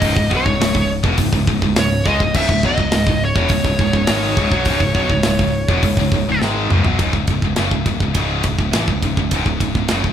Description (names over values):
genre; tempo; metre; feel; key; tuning
heavy metal; 103 BPM; 4/4; straight; C# minor; A4 = 440 Hz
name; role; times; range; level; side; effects
high-gain lead guitar; melody; 0.0-6.4 s; C#5 to E5; -21 LUFS; equal; distortion
fuzz guitar; riff; 0.0-7.0 s; C#2 to G#3; -23 LUFS; left 1 dB; distortion
heavy high-gain guitar; riff; 0.0-10.1 s; C#2 to G#3; -22 LUFS; left 7 dB; distortion
tight distorted guitar; riff; 0.0-10.1 s; C#2 to G#3; -24 LUFS; right 9 dB; distortion
growling picked electric bass; bass; 0.0-10.1 s; C#1 to C#2; -23 LUFS; equal; overdrive
tight metal drum kit; drums; 0.0-10.1 s; crash cymbal, hi-hat, kick drum, ride cymbal, snare drum, toms; -19 LUFS; equal; none
room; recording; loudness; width
moderate large studio reverb, RT60 1.3 s; band playing live in one room; -14 LUFS; side -9 dB against mid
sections
0.0-7.0 A section; 7.0-10.1 B section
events
drum fill 6.4-7.0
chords
0.0 C#m; 7.0 C#5